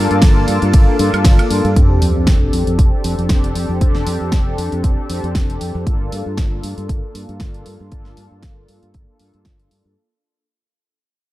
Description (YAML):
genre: nu-disco, nu disco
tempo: 117 BPM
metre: 4/4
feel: swing 55% on 16ths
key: unclear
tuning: A4 = 439 Hz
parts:
  - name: mellow synth brass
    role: accompaniment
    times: 0.0-9.9 s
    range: Bb3 to A4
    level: -21 LUFS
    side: left 1 dB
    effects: chorus, cassette tape, sidechain pumping, analog delay
  - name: lush unison pad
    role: sustained chords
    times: 0.0-1.7 s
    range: Bb3 to D6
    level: -26 LUFS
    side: left 1 dB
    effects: chorus, sidechain pumping
  - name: fingered electric bass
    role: bass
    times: 0.0-9.9 s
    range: F1 to G2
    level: -20 LUFS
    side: equal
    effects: none
  - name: pop drum kit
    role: drums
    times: 0.1-9.8 s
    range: hi-hat, ride cymbal, snare drum, woodblock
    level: -23 LUFS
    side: equal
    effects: none
  - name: electronic kick drum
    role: drums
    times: 0.2-9.6 s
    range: none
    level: -14 LUFS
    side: equal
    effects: none
  - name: sub drop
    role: sound effects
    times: 1.8-3.8 s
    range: none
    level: -20 LUFS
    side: equal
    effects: none
room: light reverb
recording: dark, warm production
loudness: -13 LUFS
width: side -16 dB against mid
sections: 0.0-1.8 A section; 1.8-10.0 B section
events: drop 0.0-1.8; fade-out 1.8-10.0; impact 1.8-3.8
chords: 0.0 Gm7; 1.8 F6; 5.9 Gm7